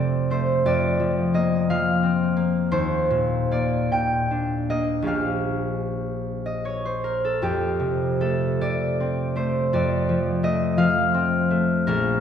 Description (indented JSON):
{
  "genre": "classical, solo harp piece",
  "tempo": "48-59 BPM (dotted quarters)",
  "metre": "6/8",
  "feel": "rubato",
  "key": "F mixolydian",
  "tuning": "A4 = 440 Hz",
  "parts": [
    { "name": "concert harp", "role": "solo", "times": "0.0-12.2 s", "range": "Bb1 to G5", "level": "-20 LUFS", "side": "left 1 dB", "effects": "none" }
  ],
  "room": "wet concert hall reverb, RT60 2.1 s",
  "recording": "heard from further back in the room",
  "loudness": "-20 LUFS",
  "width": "side -8 dB against mid",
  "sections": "0.0-12.2 A section",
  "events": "none",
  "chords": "0.0 Fadd9; 0.6 Gm11/F; 2.7 Ebmaj7; 5.1 Bbm6; 7.4 Fadd9"
}